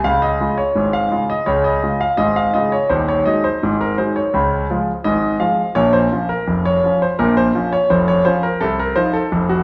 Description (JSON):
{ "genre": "ragtime piano", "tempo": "84 BPM", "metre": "2/4", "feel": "straight", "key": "Db major", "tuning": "A4 = 444 Hz", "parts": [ { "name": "clear concert grand piano", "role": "solo", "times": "0.0-9.6 s", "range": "Eb1 to F5", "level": "-17 LUFS", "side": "equal", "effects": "none" } ], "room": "wet large studio reverb, RT60 1.4 s", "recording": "band playing live in one room", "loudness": "-17 LUFS", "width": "mono", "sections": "0.1-9.6 A section", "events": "none", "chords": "0.1 Db; 2.9 Ab5/Eb; 4.3 Db; 5.8 Bbm; 8.6 F5/C", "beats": "| 0.05 0.77 | 1.48 2.20 | 2.91 3.62 | 4.34 5.05 | 5.76 6.48 | 7.19 7.90 | 8.61 9.32" }